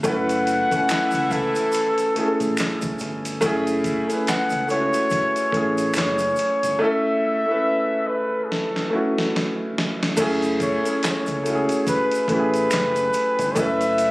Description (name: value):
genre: R&B, neo-soul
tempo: 71 BPM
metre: 4/4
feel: swing 58% on 16ths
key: F# minor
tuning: A4 = 442 Hz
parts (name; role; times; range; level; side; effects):
- warm concert grand piano; accompaniment; 0.0-14.1 s; A3 to G#5; -23 LUFS; equal; none
- deep dub fingered electric bass; bass; 0.0-14.1 s; F#1 to C#2; -31 LUFS; equal; none
- dusty soul sampler-style drum kit; drums; 0.0-14.1 s; crash cymbal, handclaps, hi-hat, kick drum, snare drum; -28 LUFS; equal; none
- tube shaker and finger snaps; percussion; 0.0-14.1 s; none; -33 LUFS; right 1 dB; none
- trumpet with bucket mute; melody; 0.1-14.1 s; G#4 to F#5; -22 LUFS; left 1 dB; slapback echo
- clear saxophone section; stabs; 0.3-2.1 s; E3 to F#4; -30 LUFS; equal; none
room: light reverb, small room ambience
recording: recorded on a phone in the room, studio reverb, compression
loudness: -19 LUFS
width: side -20 dB against mid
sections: 0.0-10.2 A section; 10.2-14.1 A section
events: drum fill 8.5-10.2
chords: 0.0 F#m9